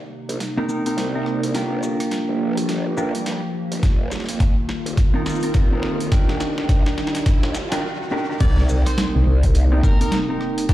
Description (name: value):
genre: glitch hop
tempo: 105 BPM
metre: 4/4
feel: swing 61% on 16ths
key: unclear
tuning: A4 = 436 Hz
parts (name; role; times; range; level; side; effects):
- warbly tape-like pad; sustained chords; 0.0-10.7 s; C3 to G4; -27 LUFS; right 1 dB; chorus, built-in reverb, phaser, vintage 12-bit sampler grit, sidechain pumping
- riser and sub drop; sound effects; 0.0-10.7 s; none; -32 LUFS; equal; none
- growl bass; bass; 0.3-9.8 s; Eb1 to G2; -22 LUFS; equal; chorus, overdrive, high-pass filter
- boom bap sampler-style drum kit; drums; 0.3-10.7 s; crash cymbal, hi-hat, rim click, shaker, snare drum; -29 LUFS; equal; overdrive, high-pass filter on hats, small room reverb, high-pass filter on snare, high-pass filter on perc, high-pass filter on cymbals
- mellow electric guitar; stabs; 0.6-10.7 s; C4 to Bb4; -24 LUFS; right 1 dB; vintage 12-bit sampler grit, sidechain pumping, digital delay
- electronic kick drum; drums; 3.8-10.7 s; none; -17 LUFS; equal; overdrive, small room reverb
- biting lead guitar; melody; 8.4-10.7 s; G4 to D5; -32 LUFS; equal; overdrive, vintage 12-bit sampler grit, digital delay
room: light reverb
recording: played on a big sound system in a bare room, large studio reverb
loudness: -18 LUFS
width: side -14 dB against mid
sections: 0.0-8.4 A section; 8.4-10.7 B section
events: build-up 0.0-8.4; drum fill 0.0-7.8; break 7.8-8.4; drop 8.4-10.7; impact 8.4-10.7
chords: 0.0 Cm7; 1.5 Gm7; 3.8 F7sus4; 6.1 Ebmaj7; 8.4 Cm7